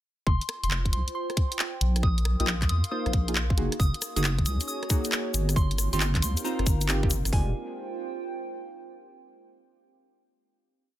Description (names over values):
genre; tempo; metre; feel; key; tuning
UK garage, two-step garage; 136 BPM; 4/4; swing 67% on 16ths; F minor; A4 = 441 Hz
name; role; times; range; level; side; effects
soft synth bell; melody; 0.3-7.5 s; Ab5 to Eb6; -36 LUFS; equal; chorus, phaser, tape echo
deep soft wobble bass; bass; 0.3-7.5 s; F1 to F2; -26 LUFS; equal; chorus, tube saturation, sidechain pumping
garage drum kit; drums; 0.3-7.5 s; hi-hat, kick drum; -24 LUFS; equal; none
warbly tape-like pad; texture; 0.8-9.1 s; Eb4 to C6; -38 LUFS; right 2 dB; chorus, built-in reverb, sidechain pumping
garage drum kit; drums; 0.4-7.3 s; handclaps, hi-hat, rim click; -30 LUFS; equal; none
deep mellow chord stab; stabs; 2.4-7.5 s; Ab3 to C5; -34 LUFS; right 1 dB; chorus, vintage 12-bit sampler grit, tape echo
airy breathy pad; sustained chords; 4.0-7.5 s; Bb3 to Ab4; -42 LUFS; right 1 dB; chorus, sidechain pumping
egg shaker; percussion; 3.8-7.3 s; none; -34 LUFS; left 5 dB; none
room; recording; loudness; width
digital ambience; none; -24 LUFS; side -13 dB against mid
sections
0.3-7.3 groove; 7.3-9.1 final chord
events
none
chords
0.3 Fsus2; 1.8 Bbsus4; 3.6 Gb69; 5.6 Eb69/G; 7.3 Fm69